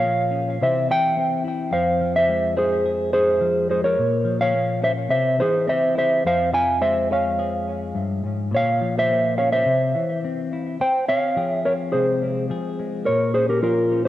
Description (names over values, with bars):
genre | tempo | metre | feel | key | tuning
highlife | 106 BPM | 4/4 | swing 54% on 16ths | F harmonic minor | A4 = 438 Hz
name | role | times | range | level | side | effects
mellow electric guitar | melody | 0.0-14.1 s | F4 to Ab5 | -20 LUFS | right 1 dB | cassette tape, analog delay
clean electric guitar | accompaniment | 0.0-14.1 s | F2 to Ab4 | -26 LUFS | left 3 dB | none
room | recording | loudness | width
moderate lush hall reverb, RT60 2.3 s | home recording on cassette | -19 LUFS | side -13 dB against mid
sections
0.0-10.8 A section; 10.8-14.1 B section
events
none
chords
0.0 Bbm; 0.6 C; 1.7 Fm; 4.0 Bbm; 5.1 C; 6.3 Fm; 8.5 Bbm; 9.7 C; 10.8 Fm; 13.1 Bbm